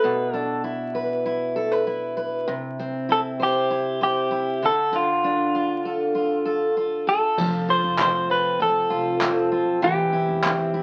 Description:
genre	acoustic pop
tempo	98 BPM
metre	4/4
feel	straight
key	unclear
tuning	A4 = 440 Hz
part	direct-recorded clean electric guitar	melody	0.0-10.8 s	F4 to C5	-25 LUFS	equal	none
part	picked steel-string acoustic guitar	accompaniment	0.0-10.8 s	B2 to C5	-26 LUFS	equal	none
part	upright bass	bass	7.4-10.8 s	E1 to B1	-42 LUFS	equal	none
part	jazz brush drum kit	drums	7.4-10.6 s	crash cymbal, handclaps, kick drum	-29 LUFS	equal	none
room	moderate studio reverb, RT60 0.6 s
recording	very old 78 rpm record, vinyl crackle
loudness	-23 LUFS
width	mono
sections	0.0-7.4 A section; 7.4-10.8 B section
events	none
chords	0.0 Bmadd11; 2.5 C; 4.6 Dm; 7.4 F; 9.8 C/E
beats	| 0.04 0.65 1.26 1.87 | 2.48 3.10 3.71 4.32 | 4.93 5.54 6.16 6.77 | 7.38 7.99 8.61 9.22 | 9.83 10.44

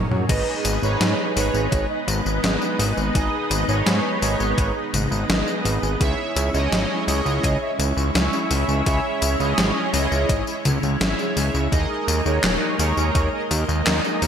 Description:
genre	synthwave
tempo	84 BPM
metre	4/4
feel	straight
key	G# minor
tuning	A4 = 440 Hz
part	string machine, full ensemble	sustained chords	0.0-14.3 s	G#3 to D#5	-26 LUFS	equal	ensemble chorus, sidechain pumping
part	mellow synth brass	stabs	0.0-14.3 s	D#4 to E5	-25 LUFS	right 2 dB	chorus, phaser, ping-pong delay
part	fat analog bass	bass	0.0-14.3 s	D#1 to G#2	-23 LUFS	equal	none
part	gated 80s digital drum machine	drums	0.1-14.3 s	crash cymbal, handclaps, hi-hat, snare drum, tambourine, toms	-24 LUFS	left 1 dB	gated reverb, gated reverb snare, overdrive
part	electronic kick drum	drums	0.3-13.3 s	none	-24 LUFS	equal	overdrive
room	moderate lush hall reverb, RT60 1.9 s, digital ambience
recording	bright 1980s-style digital production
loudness	-19 LUFS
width	side -8 dB against mid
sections	0.3-14.3 A section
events	drum fill 0.0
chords	0.3 G#m; 6.0 C#m; 11.7 D#sus4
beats	| 0.29 1.01 1.72 2.44 | 3.15 3.86 4.58 5.29 | 6.01 6.72 7.44 8.15 | 8.86 9.58 10.29 11.01 | 11.72 12.44 13.15 13.86

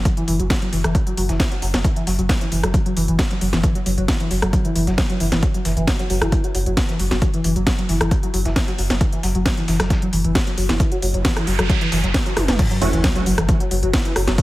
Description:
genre	driving peak-time techno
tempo	134 BPM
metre	4/4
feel	straight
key	unclear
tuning	A4 = 440 Hz
part	warm sub bass	bass	0.0-14.4 s	F#1	-22 LUFS	equal	tube saturation, sidechain pumping, low-pass filter
part	overdriven synth lead	riff	0.1-14.4 s	E3 to F#3	-23 LUFS	equal	lush chorus, cassette tape, sidechain pumping, digital delay
part	dusty soul sampler-style drum kit	drums	0.1-14.4 s	hi-hat, snare drum	-36 LUFS	left 1 dB	none
part	electronic kick drum	drums	0.1-14.4 s	none	-20 LUFS	equal	none
part	techno drum kit	drums	0.1-14.4 s	crash cymbal, hi-hat, rim click, snare drum, toms	-24 LUFS	equal	none
part	noise sweep and sub drop	sound effects	11.0-14.4 s	none	-28 LUFS	right 1 dB	none
part	rave stab	stabs	12.8-12.9 s	A3 to F#4	-26 LUFS	right 4 dB	chorus, built-in reverb, cassette tape, sidechain pumping, digital delay
room	light reverb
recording	heavily compressed radio sound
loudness	-17 LUFS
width	side -17 dB against mid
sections	0.0-12.6 A section; 12.6-14.4 B section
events	noise sweep 11.0-12.6; drum fill 12.4; drop 12.6-14.4; impact 12.6-14.4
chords	0.0 Esus2/F#; 12.6 N.C.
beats	| 0.06 0.50 0.95 1.40 | 1.85 2.29 2.74 3.19 | 3.64 4.08 4.53 4.98 | 5.43 5.88 6.32 6.77 | 7.22 7.67 8.11 8.56 | 9.01 9.46 9.90 10.35 | 10.80 11.25 11.70 12.14 | 12.59 13.04 13.49 13.94 | 14.38

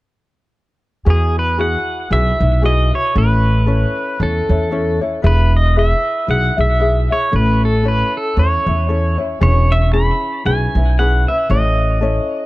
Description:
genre	Hawaiian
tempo	115 BPM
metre	4/4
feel	swing 57% on 8ths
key	E major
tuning	A4 = 439 Hz
part	pedal steel guitar	melody	1.1-12.5 s	G#4 to B5	-19 LUFS	right 1 dB	digital delay
part	ukulele	accompaniment	1.1-12.5 s	C#4 to E5	-22 LUFS	left 3 dB	none
part	upright bass	bass	1.1-12.2 s	E1 to E2	-15 LUFS	equal	none
room	light reverb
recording	dark, warm production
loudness	-13 LUFS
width	side -18 dB against mid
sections	1.1-12.5 A section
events	none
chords	1.1 Eadd9; 3.2 A; 5.2 E; 7.3 A; 9.4 E6; 11.5 A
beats	| 1.07 1.59 2.11 2.63 | 3.15 3.68 4.20 4.72 | 5.24 5.76 6.29 6.81 | 7.33 7.85 8.37 8.89 | 9.42 9.94 10.46 10.98 | 11.50 12.02

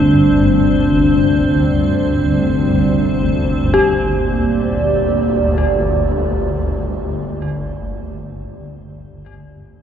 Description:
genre	dark ambient drone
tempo	free time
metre	none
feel	none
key	G minor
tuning	A4 = 439 Hz
part	dark analog pad	sustained chords	0.0-7.8 s	G3 to D5	-16 LUFS	right 1 dB	chorus
part	dark detuned synth bell	arpeggios	0.0-9.8 s	G4	-21 LUFS	left 2 dB	chorus, tremolo, ping-pong delay
part	swarming drone	drone	0.0-7.4 s	G1 to D2	-18 LUFS	equal	built-in reverb
part	icy glass pad	texture	0.0-3.8 s	C4 to C5	-24 LUFS	left 1 dB	chorus, built-in reverb
room	wet cathedral reverb, RT60 5.1 s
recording	cassette tape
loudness	-13 LUFS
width	side -9 dB against mid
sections	0.0-3.7 A section; 3.7-8.6 B section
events	none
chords	0.0 G5; 3.7 Gm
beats	free time

